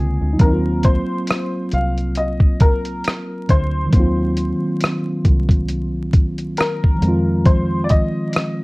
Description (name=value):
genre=lo-fi hip hop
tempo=68 BPM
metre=4/4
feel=swing 57% on 16ths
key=Eb dorian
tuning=A4 = 440 Hz
part: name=clear upright piano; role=melody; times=0.0-8.6 s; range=Ab4 to F5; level=-25 LUFS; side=left 2 dB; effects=low-pass filter, analog delay
part: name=mellow tine electric piano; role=accompaniment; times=0.0-8.6 s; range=D3 to F4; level=-21 LUFS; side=equal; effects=medium stereo tremolo, cassette tape, low-pass filter
part: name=deep dub fingered electric bass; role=bass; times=0.0-8.0 s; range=C2 to F2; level=-22 LUFS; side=equal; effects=none
part: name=lo-fi sampler-style drum kit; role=drums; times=0.4-8.6 s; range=hi-hat, kick drum, rim click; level=-15 LUFS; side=equal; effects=none
room=light reverb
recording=worn, warbling old tape, cassette tape, vinyl crackle, warbly pitch drift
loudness=-15 LUFS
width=side -24 dB against mid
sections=0.4-8.6 A section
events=none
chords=0.4 Ebm69; 7.0 Fm7